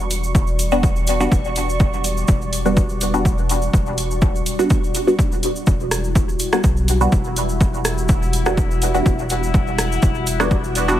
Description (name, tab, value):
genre	dub techno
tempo	124 BPM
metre	4/4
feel	swing 54% on 16ths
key	E dorian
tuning	A4 = 438 Hz
part	deep dark ambient pad	sustained chords	0.0-11.0 s	G3 to F#5	-28 LUFS	left 1 dB	chorus, built-in reverb, sidechain pumping
part	soft dub sub bass	bass	0.0-11.0 s	E1 to B1	-23 LUFS	equal	sidechain pumping
part	cabasa	percussion	0.0-11.0 s	none	-30 LUFS	equal	none
part	bubbling stepped-filter texture	texture	0.0-11.0 s	E4 to C#6	-31 LUFS	left 2 dB	chorus, built-in reverb, sidechain pumping
part	punchy analog drum machine	drums	0.1-10.9 s	hi-hat, rim click	-25 LUFS	right 1 dB	overdrive
part	electronic kick drum	drums	0.3-10.6 s	none	-19 LUFS	equal	overdrive
part	filtered dub chord stab	stabs	0.7-11.0 s	G3 to F#4	-22 LUFS	equal	phaser, cassette tape, sidechain pumping, dub echo
room	little or no reverb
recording	vinyl crackle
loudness	-16 LUFS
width	side -12 dB against mid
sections	0.0-11.0 A section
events	none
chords	0.0 Em9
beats	0.35 0.83 1.32 | 1.80 2.28 2.77 3.25 | 3.73 4.22 4.70 5.19 | 5.67 6.16 6.64 7.12 | 7.61 8.09 8.57 9.06 | 9.54 10.03 10.51 10.99